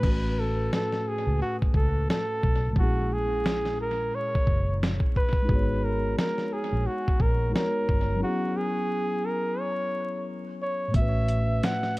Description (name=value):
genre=lo-fi hip hop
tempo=88 BPM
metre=4/4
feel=swing 58% on 16ths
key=unclear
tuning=A4 = 440 Hz
part: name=warm flugelhorn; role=melody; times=0.0-12.0 s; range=F#4 to F#5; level=-29 LUFS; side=right 1 dB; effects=low-pass filter, tape echo
part: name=mellow tine electric piano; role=accompaniment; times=0.0-12.0 s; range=A2 to C#5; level=-31 LUFS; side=left 1 dB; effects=cassette tape, low-pass filter, tape echo
part: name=vintage muted fingered electric bass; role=bass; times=0.0-11.6 s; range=F#1 to C#2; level=-27 LUFS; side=equal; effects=none
part: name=dusty soul sampler-style drum kit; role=drums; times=0.0-12.0 s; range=crash cymbal, hi-hat, kick drum, snare drum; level=-26 LUFS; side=equal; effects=vintage 12-bit sampler grit
room=light reverb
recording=echo-heavy mix, vinyl crackle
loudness=-24 LUFS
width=side -20 dB against mid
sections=0.0-12.0 A section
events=break 0.0-10.9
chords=0.0 A6; 2.8 A#m7b5; 5.5 G#m11; 8.2 F#9sus4; 10.9 A6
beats=| 0.04 0.72 1.40 2.08 | 2.76 3.44 4.13 4.81 | 5.49 6.17 6.85 7.54 | 8.22 8.90 9.58 10.26 | 10.94 11.63